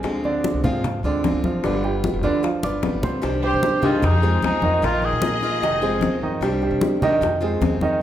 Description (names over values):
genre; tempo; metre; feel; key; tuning
latin, Cuban son and guajira; 151 BPM; 4/4; straight; C minor; A4 = 440 Hz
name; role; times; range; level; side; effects
picked steel-string acoustic guitar; accompaniment; 0.0-8.0 s; C3 to G4; -26 LUFS; left 2 dB; none
warm grand piano; arpeggios; 0.0-8.0 s; D3 to D6; -23 LUFS; right 3 dB; none
upright bass; bass; 0.0-8.0 s; F1 to C3; -26 LUFS; equal; none
bongos; percussion; 0.0-8.0 s; none; -29 LUFS; left 4 dB; none
congas; percussion; 0.0-8.0 s; none; -28 LUFS; left 1 dB; none
rich studio violin section; second line; 3.4-6.2 s; Ab4 to Eb5; -28 LUFS; right 2 dB; none
mellow cor anglais; melody; 3.5-6.2 s; Eb4 to Ab4; -24 LUFS; left 1 dB; none
room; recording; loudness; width
wet recital hall reverb, RT60 1.3 s; recorded in a church or concert hall; -18 LUFS; side -11 dB against mid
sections
0.0-3.2 A section; 3.2-8.0 B section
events
drum fill 2.6-3.2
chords
0.0 Dm7b5; 1.6 G7; 3.2 Cmadd9; 4.0 Fm7; 4.8 Bbsus4; 5.6 Fm7; 6.4 Cmadd9; 7.2 Fm7